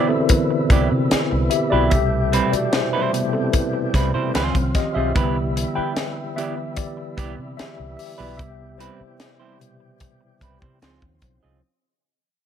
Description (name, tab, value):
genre	lush 1970s-style soul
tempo	74 BPM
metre	4/4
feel	straight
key	unclear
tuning	A4 = 440 Hz
part	mellow tine electric piano	accompaniment	0.0-11.7 s	B2 to G5	-23 LUFS	left 2 dB	medium stereo tremolo
part	overdriven tonewheel organ	sustained chords	0.0-11.6 s	B2 to G4	-30 LUFS	equal	slow rotary speaker
part	semi-hollow electric guitar	riff	0.0-11.6 s	G3 to Eb5	-26 LUFS	right 7 dB	none
part	tight funk drum kit	drums	0.3-11.4 s	hi-hat, kick drum, snare drum	-21 LUFS	equal	none
part	vintage muted fingered electric bass	bass	0.7-11.6 s	B1 to C3	-24 LUFS	equal	none
room	light reverb, small room reverb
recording	none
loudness	-18 LUFS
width	side -9 dB against mid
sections	0.0-11.6 A section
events	fade-out 0.0-11.6; tine electric piano solo 0.0-11.6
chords	0.0 Cmaj7; 1.9 Am9/C; 4.3 C#maj7; 5.2 Cmaj7; 10.8 C#maj7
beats	0.30 1.11 | 1.92 2.73 3.54 4.35 | 5.16 5.97 6.78 7.58 | 8.39 9.20 10.01 10.82